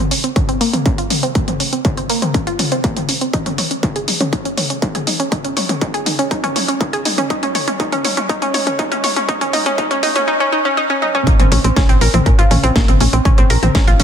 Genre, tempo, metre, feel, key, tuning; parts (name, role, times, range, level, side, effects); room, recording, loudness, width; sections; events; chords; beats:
melodic techno; 121 BPM; 4/4; straight; Bb minor; A4 = 440 Hz
wide unison pluck; arpeggios; 0.0-14.0 s; Bb3 to Db5; -18 LUFS; equal; sidechain pumping, digital delay
techno drum kit; drums; 0.1-14.0 s; hi-hat, snare drum, toms; -20 LUFS; left 1 dB
electronic kick drum; drums; 0.4-13.8 s; -17 LUFS; equal; distortion
tight sequencer bass; bass; 11.3-14.0 s; Ab1 to Bb2; -16 LUFS; equal; tube saturation, sidechain pumping
light reverb; dense, heavily limited modern master, high-pass filter; -14 LUFS; side -8 dB against mid
0.0-11.3 A section; 11.3-14.0 B section
build-up 0.0-11.3; drum fill 0.0-10.3, 11.0; filter sweep on synth arpeggio sound 0.0-11.3; drop 11.3-14.0
0.0 Bbmadd9; 3.3 Dbsus2; 11.3 Bbmadd9
0.36 0.86 | 1.35 1.85 2.34 2.84 | 3.34 3.83 4.33 4.82 | 5.32 5.82 6.31 6.81 | 7.30 7.80 8.29 8.79 | 9.29 9.78 10.28 10.77 | 11.27 11.77 12.26 12.76 | 13.25 13.75